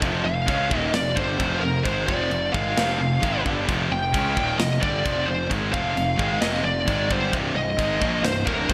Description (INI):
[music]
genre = heavy metal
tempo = 132 BPM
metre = 4/4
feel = straight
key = unclear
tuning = A4 = 440 Hz
[part]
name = distorted electric guitar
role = riff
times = 0.0-8.7 s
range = C2 to Db4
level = -30 LUFS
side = equal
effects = overdrive
[part]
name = heavy high-gain guitar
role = riff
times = 0.0-8.7 s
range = C2 to Db4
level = -31 LUFS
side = equal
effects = distortion
[part]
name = fuzz picked electric bass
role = bass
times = 0.0-8.7 s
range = C1 to Db2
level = -31 LUFS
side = equal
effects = overdrive
[part]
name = modern studio drum kit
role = drums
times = 0.0-8.7 s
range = china cymbal, kick drum, snare drum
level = -31 LUFS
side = equal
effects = gated reverb
[part]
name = high-gain lead guitar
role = melody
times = 0.2-8.7 s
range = Bb4 to G5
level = -28 LUFS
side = equal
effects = distortion
[sound]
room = moderate lush hall reverb, RT60 1.9 s, small room ambience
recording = bright 1980s-style digital production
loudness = -23 LUFS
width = mono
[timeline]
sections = 0.0-8.7 A section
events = none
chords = 0.0 F5; 7.3 Cm